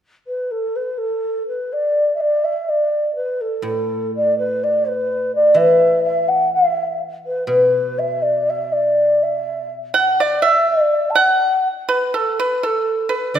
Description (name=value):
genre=chinese traditional, Chinese chamber ensemble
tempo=62 BPM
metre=2/4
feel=rubato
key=D gong mode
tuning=A4 = 445 Hz
part: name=mellow hollow xiao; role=melody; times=0.3-13.4 s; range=A4 to A5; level=-17 LUFS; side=equal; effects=none
part: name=guzheng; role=accompaniment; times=3.6-13.4 s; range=A2 to E3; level=-19 LUFS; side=left 2 dB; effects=none
part: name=pipa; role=second line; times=9.9-13.4 s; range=A4 to F#5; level=-17 LUFS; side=right 3 dB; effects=none
room=wet scoring stage reverb, RT60 1.8 s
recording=none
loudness=-16 LUFS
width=side -9 dB against mid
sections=0.0-1.7 A section; 1.7-13.4 B section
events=none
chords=none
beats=0.73 | 1.70 2.68 | 3.65 4.62 | 5.58 6.54 | 7.50 8.48 | 9.47 10.46 | 11.44 12.40 | 13.36